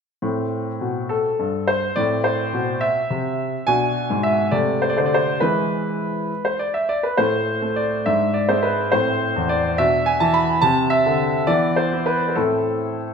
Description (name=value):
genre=classical-period piano sonatina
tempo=69 BPM (dotted quarters)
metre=6/8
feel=rubato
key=A minor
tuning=A4 = 440 Hz
part: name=clear concert grand piano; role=solo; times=0.2-13.1 s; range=E2 to B5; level=-18 LUFS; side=equal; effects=none
room=moderate recital hall reverb, RT60 1.6 s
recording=minimal, uncompressed stereo recording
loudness=-18 LUFS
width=side -6 dB against mid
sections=0.2-13.1 A section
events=none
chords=0.2 Am; 3.7 G#dim; 4.5 Am/C; 5.4 E; 7.2 N.C.; 8.1 G#dim; 8.9 Am; 9.8 E5/B; 10.6 C69; 11.5 E5; 12.3 Am